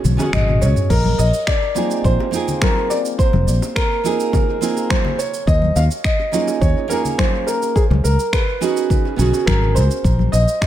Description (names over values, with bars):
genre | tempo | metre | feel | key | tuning
sunset chillout | 105 BPM | 4/4 | straight | unclear | A4 = 440 Hz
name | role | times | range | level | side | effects
warm concert grand piano | melody | 0.0-10.7 s | Ab4 to F5 | -21 LUFS | right 1 dB | analog delay
fingered electric bass | bass | 0.0-10.4 s | F1 to Eb2 | -16 LUFS | equal | tube saturation
smooth R&B drum kit | drums | 0.0-10.7 s | crash cymbal, finger snaps, shaker, toms | -25 LUFS | equal | analog delay
congas and bongos | percussion | 0.0-10.7 s | none | -27 LUFS | left 5 dB | none
nylon-string guitar | accompaniment | 0.2-10.0 s | Bb3 to Ab4 | -22 LUFS | moving between left 6 dB and right 8 dB | auto-pan, dub echo
electronic kick drum | drums | 0.3-10.7 s | none | -19 LUFS | equal | none
room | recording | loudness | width
moderate plate reverb, RT60 1.5 s | echo-heavy mix | -15 LUFS | side -12 dB against mid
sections
0.0-10.7 A section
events
drum fill 0.0-0.9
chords
0.0 Db9sus4; 0.9 Bb9sus4; 5.2 Eb9sus4; 7.8 Db9sus4; 10.0 Bbsus4